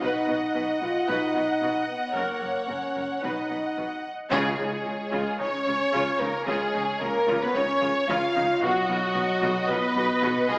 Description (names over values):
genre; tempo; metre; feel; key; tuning
cinematic; 112 BPM; 4/4; straight; Db mixolydian; A4 = 441 Hz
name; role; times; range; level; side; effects
warm symphonic violin section; melody; 0.0-10.6 s; Gb4 to Gb5; -28 LUFS; equal; none
rich symphonic violin section; second line; 0.0-10.6 s; Gb4 to F5; -30 LUFS; equal; none
rich symphonic viola section; accompaniment; 0.0-10.6 s; Eb4 to Eb5; -30 LUFS; equal; none
mellow French horn section; sustained chords; 0.0-10.6 s; Gb3 to F4; -28 LUFS; equal; none
rich symphonic cello section; bass; 0.0-10.6 s; Gb2 to Db3; -34 LUFS; equal; none
rich symphonic double bass section; bass; 0.0-10.6 s; Gb1 to Db2; -41 LUFS; equal; none
mellow tuba; bass; 4.3-10.6 s; Cb2 to Db2; -36 LUFS; equal; none
timpani; percussion; 4.3-5.1 s; Db3; -41 LUFS; equal; none
room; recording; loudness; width
wet recital hall reverb, RT60 1.4 s; heard from further back in the room, small speaker sound; -23 LUFS; side -28 dB against mid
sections
0.0-4.3 A section; 4.3-10.6 B section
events
band accent 4.3-4.9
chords
0.0 Cb; 2.2 Gb; 3.2 Cb; 4.3 Db; 8.6 Cb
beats
| 0.02 0.55 1.09 1.62 | 2.16 2.70 3.24 3.78 | 4.32 4.86 5.41 5.94 | 6.48 7.01 7.55 8.09 | 8.62 9.16 9.70 10.23